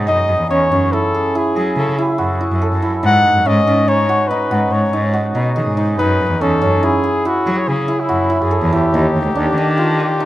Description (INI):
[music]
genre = contemporary instrumental, chamber music in an uneven meter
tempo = 142 BPM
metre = 7/4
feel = straight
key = unclear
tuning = A4 = 439 Hz
[part]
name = hammered dulcimer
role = arpeggios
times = 0.0-10.3 s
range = C#4 to A4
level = -18 LUFS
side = right 2 dB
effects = none
[part]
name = warm cello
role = bass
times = 0.0-10.2 s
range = D2 to F#3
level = -18 LUFS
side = equal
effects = none
[part]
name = warm flugelhorn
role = melody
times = 0.1-10.3 s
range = E4 to F#5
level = -18 LUFS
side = left 2 dB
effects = none
[sound]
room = light reverb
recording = close, detailed microphones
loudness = -13 LUFS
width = side -15 dB against mid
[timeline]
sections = 0.0-10.3 A section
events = none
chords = 0.1 F#m9; 3.0 G#7(no3); 6.0 F#m9; 8.9 D#maj7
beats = | 0.09 0.51 0.93 1.35 1.77 2.20 2.62 | 3.04 3.46 3.88 4.30 4.73 5.15 5.57 | 5.99 6.41 6.83 7.25 7.68 8.10 8.52 | 8.94 9.36 9.78 10.20